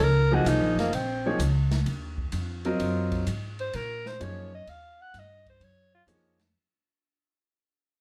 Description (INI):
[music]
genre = modal jazz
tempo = 128 BPM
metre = 4/4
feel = swing 69% on 8ths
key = unclear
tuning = A4 = 439 Hz
[part]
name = breathy alto saxophone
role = melody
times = 0.0-6.0 s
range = Bb3 to Gb5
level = -32 LUFS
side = equal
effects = none
[part]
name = upright bass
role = bass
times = 0.0-6.5 s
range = Gb1 to Bb2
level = -30 LUFS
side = equal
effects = none
[part]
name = clear baby grand piano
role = accompaniment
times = 0.3-6.4 s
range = F3 to Eb5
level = -31 LUFS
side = equal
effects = none
[part]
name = open jazz drum kit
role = drums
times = 0.5-6.5 s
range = hi-hat, kick drum, ride cymbal, snare drum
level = -40 LUFS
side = equal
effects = none
[sound]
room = moderate club reverb, RT60 0.6 s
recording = none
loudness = -27 LUFS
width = mono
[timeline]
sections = 0.0-6.5 A section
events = fade-out 0.0-6.5; alto saxophone solo 0.0-6.5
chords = 0.0 Ebm9